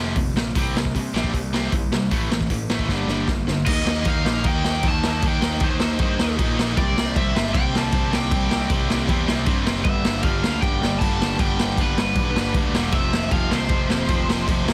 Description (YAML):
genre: punk rock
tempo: 155 BPM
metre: 4/4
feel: straight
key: C mixolydian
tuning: A4 = 440 Hz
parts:
  - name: distorted electric guitar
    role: riff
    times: 0.0-14.7 s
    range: F2 to Eb4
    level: -28 LUFS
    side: equal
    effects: overdrive
  - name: fuzz picked electric bass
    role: bass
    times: 0.0-14.7 s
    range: E1 to C3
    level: -29 LUFS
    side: equal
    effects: overdrive
  - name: raw garage drum kit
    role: drums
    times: 0.2-14.7 s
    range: crash cymbal, hi-hat, kick drum, snare drum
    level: -24 LUFS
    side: equal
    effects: none
  - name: cranked stack guitar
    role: melody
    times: 3.7-14.7 s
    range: B4 to A5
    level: -30 LUFS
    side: equal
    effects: overdrive, tape echo
room: little or no reverb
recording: dense, heavily limited modern master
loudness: -21 LUFS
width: mono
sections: 0.0-3.7 A section; 3.7-14.7 B section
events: drum fill 2.9-3.7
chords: 0.0 F5; 0.6 C5; 2.1 A5; 2.9 G5; 3.7 Eb; 6.8 C5; 9.9 G; 12.9 F5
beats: 0.17 | 0.56 0.95 1.34 1.74 | 2.13 2.52 2.91 3.30 | 3.68 4.07 4.46 4.85 | 5.23 5.62 6.00 6.39 | 6.78 7.16 7.54 7.93 | 8.31 8.70 9.09 9.47 | 9.86 10.24 10.62 11.01 | 11.39 11.78 12.17 12.55 | 12.94 13.32 13.71 14.10 | 14.48